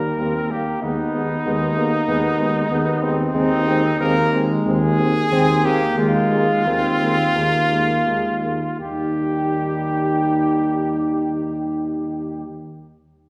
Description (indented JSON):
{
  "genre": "classical, brass quintet",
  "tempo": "81-96 BPM",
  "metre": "4/4",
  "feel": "rubato",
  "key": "Eb major",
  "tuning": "A4 = 438 Hz",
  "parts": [
    { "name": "dark trumpet", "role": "melody", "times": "0.0-12.4 s", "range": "Eb4 to Bb4", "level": "-25 LUFS", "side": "equal", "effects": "none" },
    { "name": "mellow flugelhorn", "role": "second line", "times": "0.0-12.4 s", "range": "G3 to G4", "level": "-28 LUFS", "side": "equal", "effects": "none" },
    { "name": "mellow tuba", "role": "bass", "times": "0.0-12.4 s", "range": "Eb2", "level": "-26 LUFS", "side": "equal", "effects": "none" },
    { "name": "mellow French horn", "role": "accompaniment", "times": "0.2-12.4 s", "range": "Bb3 to Eb4", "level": "-27 LUFS", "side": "equal", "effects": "none" },
    { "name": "mellow trombone", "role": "accompaniment", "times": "0.2-12.4 s", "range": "G3 to Ab3", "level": "-31 LUFS", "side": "equal", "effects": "none" }
  ],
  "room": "wet scoring stage reverb, RT60 1.6 s",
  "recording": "heard from further back in the room",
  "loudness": "-20 LUFS",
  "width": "mono",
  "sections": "0.0-8.8 A section; 8.8-11.7 B section",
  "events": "slowing down 2.1-8.8",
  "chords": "0.0 Eb; 0.8 Abm/Eb; 3.3 Ab/Eb; 6.0 Bb5/Eb; 8.8 Eb"
}